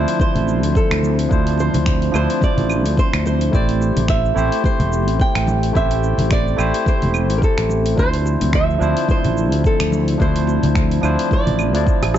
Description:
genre	sunset chillout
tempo	108 BPM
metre	4/4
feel	swing 57% on 16ths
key	D minor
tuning	A4 = 440 Hz
part	flamenco guitar	melody	0.0-12.1 s	A4 to G5	-24 LUFS	right 2 dB	ping-pong delay
part	barky tine electric piano	accompaniment	0.0-12.2 s	F3 to D5	-22 LUFS	equal	auto-pan, tape echo
part	airy breathy pad	sustained chords	0.0-12.2 s	D3 to G4	-24 LUFS	equal	chorus
part	sustaining fretless electric bass	bass	0.0-12.2 s	E1 to D2	-19 LUFS	equal	none
part	deep house drum kit	drums	0.1-12.2 s	claves, finger snaps, hi-hat, rim click, shaker	-28 LUFS	right 1 dB	none
part	electronic kick drum	drums	0.2-12.0 s	none	-18 LUFS	equal	none
part	congas and bongos	percussion	0.2-12.2 s	none	-25 LUFS	equal	none
room	little or no reverb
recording	dark, warm production, nothing above 7.8 kHz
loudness	-15 LUFS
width	side -11 dB against mid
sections	0.0-12.2 A section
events	drum fill 12.0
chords	0.0 Dm9; 3.5 Am7; 8.0 Dm9

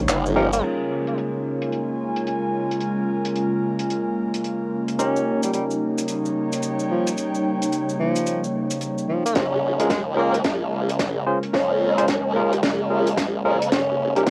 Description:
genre	glitch hop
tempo	110 BPM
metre	4/4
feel	swing 62% on 16ths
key	Bb dorian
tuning	A4 = 436 Hz
part	warbly tape-like pad	sustained chords	0.0-14.3 s	Db3 to G4	-29 LUFS	equal	chorus, built-in reverb, sidechain pumping, cassette tape
part	airy breathy pad	texture	0.0-14.3 s	Db4 to Ab5	-34 LUFS	equal	chorus, sidechain pumping, cassette tape
part	formant-sweep wobble bass	bass	0.1-0.6, 9.4-14.3 s	Eb1 to F2	-26 LUFS	equal	chorus, tube saturation, high-pass filter
part	crisp fusion drum kit	drums	0.1-14.3 s	crash cymbal, handclaps, hi-hat, snare drum	-30 LUFS	equal	low-pass filter on hats, cassette tape, low-pass filter on cymbals, low-pass filter on snare, low-pass filter on room
part	cabasa	percussion	0.1-0.6, 5.0-9.3 s	none	-36 LUFS	equal	none
part	breathy tenor saxophone	melody	0.4-0.6, 5.0-14.3 s	F3 to Db4	-28 LUFS	equal	analog delay
part	barky tine electric piano	stabs	0.4-14.3 s	Db4 to C5	-29 LUFS	equal	sidechain pumping, low-pass filter, cassette tape, analog delay
part	electronic kick drum	drums	9.4-14.3 s	none	-28 LUFS	equal	overdrive, high-pass filter on kick, cassette tape, high-pass filter on room
room	moderate booth ambience, RT60 0.2 s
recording	home recording on cassette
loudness	-23 LUFS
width	mono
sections	0.6-9.4 A section; 9.4-14.3 B section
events	filter sweep on tine electric piano 0.6-9.4; build-up 9.4-14.3; drum fill 9.4-14.3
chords	0.0 Eb7; 0.6 Bbm7; 5.0 Eb7; 9.4 Bbm7; 13.7 Eb7

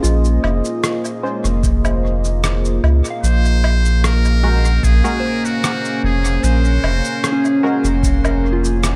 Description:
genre	ambient dub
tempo	75 BPM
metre	4/4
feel	straight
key	unclear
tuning	A4 = 439 Hz
part	deep dark ambient pad	sustained chords	0.0-9.0 s	Bb3 to Ab5	-24 LUFS	equal	chorus, built-in reverb
part	soft synth bell	arpeggios	0.0-9.0 s	Db4 to F5	-28 LUFS	equal	chorus, phaser, dub echo
part	soft dub sub bass	bass	0.0-9.0 s	F1 to Db2	-18 LUFS	equal	tube saturation
part	electronic cabasa, woodblock and rim click	drums	0.0-9.0 s	none	-26 LUFS	equal	overdrive, dub echo
part	filtered dub chord stab	stabs	1.2-7.9 s	Ab3 to C5	-29 LUFS	equal	chorus, dub echo
part	electronic kick drum	drums	1.6-8.2 s	none	-22 LUFS	equal	overdrive
part	trumpet with metal mute	melody	3.2-7.6 s	Gb4 to C5	-26 LUFS	equal	dub echo
room	moderate concert hall reverb, RT60 2.1 s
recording	none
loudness	-16 LUFS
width	mono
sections	0.0-9.0 A section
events	none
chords	0.0 Bbm9; 3.2 Gbadd9

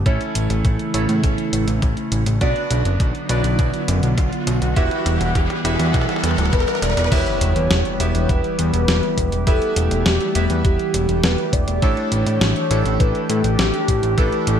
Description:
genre	synthwave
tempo	102 BPM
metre	4/4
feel	straight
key	E dorian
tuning	A4 = 436 Hz
part	chorused pulse-width pad	sustained chords	0.0-14.6 s	C#3 to F#5	-25 LUFS	equal	sidechain pumping
part	bright electric grand piano	stabs	0.0-14.6 s	A3 to E5	-25 LUFS	right 3 dB	wide subtle chorus, low-pass filter, ping-pong delay
part	fat analog bass	bass	0.0-14.6 s	D1 to A2	-20 LUFS	equal	sidechain pumping
part	riser and impact	sound effects	0.8-9.5 s	none	-29 LUFS	right 1 dB	none
part	clean 12-bit digital drum machine	drums	0.1-14.6 s	crash cymbal, hi-hat, snare drum, toms	-24 LUFS	left 1 dB	high-pass filter on hats, high-pass filter on snare, high-pass filter on toms, high-pass filter on cymbals, high-pass filter on room, gated reverb
part	electronic kick drum	drums	0.1-14.3 s	none	-19 LUFS	equal	none
part	warm velvety synth lead	melody	6.5-14.6 s	G4 to D5	-24 LUFS	left 1 dB	chorus, ping-pong delay
room	light reverb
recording	bright 1980s-style digital production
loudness	-16 LUFS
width	side -8 dB against mid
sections	0.0-7.1 A section; 7.1-14.6 B section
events	drum fill 0.0-7.1; filter sweep on analog synth pad 0.0-7.1; riser 0.8-7.1; impact 7.1-9.5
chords	0.1 A; 2.4 Bm; 4.8 Emadd9; 7.1 Em; 11.8 A7sus4

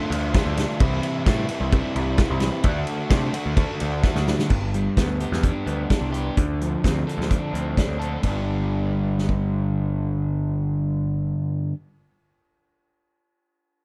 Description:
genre	indie rock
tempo	128 BPM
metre	4/4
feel	straight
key	G mixolydian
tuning	A4 = 440 Hz
part	crunchy overdriven guitar	riff	0.0-11.8 s	G2 to A4	-27 LUFS	equal	none
part	overdriven picked electric bass	bass	0.1-11.3 s	G1 to C3	-29 LUFS	equal	none
part	loose indie drum kit	drums	0.1-9.4 s	crash cymbal, hi-hat, kick drum, ride cymbal, snare drum	-26 LUFS	equal	none
room	little or no reverb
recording	dark, warm production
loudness	-23 LUFS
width	mono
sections	0.0-4.5 A section; 4.5-8.2 B section; 8.2-12.0 C section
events	drum fill 4.0-4.5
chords	0.0 Dm; 0.8 C; 2.6 D; 4.5 G; 6.4 Dm7; 8.2 G

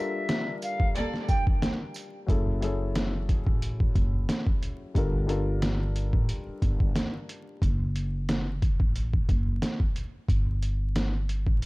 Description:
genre	hip hop, boom-bap hip-hop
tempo	90 BPM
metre	4/4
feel	swing 54% on 16ths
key	unclear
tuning	A4 = 443 Hz
part	silver concert flute	melody	0.0-1.4 s	E5 to G5	-33 LUFS	right 1 dB	high-pass filter, low-pass filter, tape echo
part	dark grand piano	accompaniment	0.0-7.6 s	F#3 to Bb4	-35 LUFS	left 3 dB	high-pass filter, low-pass filter
part	trip hop sampler-style drum kit	drums	0.3-11.7 s	hi-hat, kick drum, snare drum	-26 LUFS	equal	overdrive
part	tambourine	percussion	0.6-2.1 s	none	-48 LUFS	right 6 dB	none
part	warm chamber string section	stabs	0.9-1.2 s	Bb3 to D5	-33 LUFS	right 1 dB	high-pass filter, low-pass filter, tape echo
part	upright bass	bass	2.3-11.6 s	F#1 to A1	-28 LUFS	equal	none
room	small room ambience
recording	dark, warm production, vinyl crackle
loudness	-25 LUFS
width	side -23 dB against mid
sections	0.0-2.3 A section; 2.3-11.7 B section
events	break 0.0-2.3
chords	0.0 Gm9; 2.3 F#m9; 5.0 Gm9; 7.6 F#m; 10.3 N.C.

